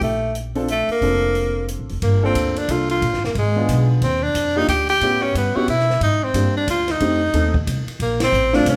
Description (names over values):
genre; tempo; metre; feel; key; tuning
jazz, small-group swing and bop; 180 BPM; 3/4; swing 62% on 8ths; G minor; A4 = 441 Hz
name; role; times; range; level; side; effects
bright tenor saxophone; melody; 0.0-8.8 s; Ab3 to G4; -22 LUFS; equal; none
warm baby grand piano; accompaniment; 0.0-8.8 s; A3 to A4; -26 LUFS; equal; none
upright bass; bass; 0.0-8.8 s; F1 to B2; -24 LUFS; equal; none
compact cocktail drum kit; drums; 0.0-8.8 s; hi-hat, kick drum, ride cymbal, snare drum; -31 LUFS; equal; none
room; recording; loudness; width
moderate large studio reverb, RT60 1.3 s; band playing live in one room; -19 LUFS; mono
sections
0.0-2.0 A section; 2.0-8.8 B section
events
band accent 8.2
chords
0.0 Bbmaj9; 2.0 Gm9; 3.0 Bb7b9 (rootless); 4.0 Ebmaj9; 5.0 A9; 6.0 Abmaj9#11; 7.0 F7; 8.0 Bbmaj7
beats
| 0.01 0.35 0.68 | 1.02 1.35 1.69 | 2.02 2.35 2.69 | 3.02 3.35 3.69 | 4.02 4.35 4.68 | 5.02 5.35 5.68 | 6.01 6.35 6.68 | 7.01 7.34 7.67 | 8.00 8.33 8.66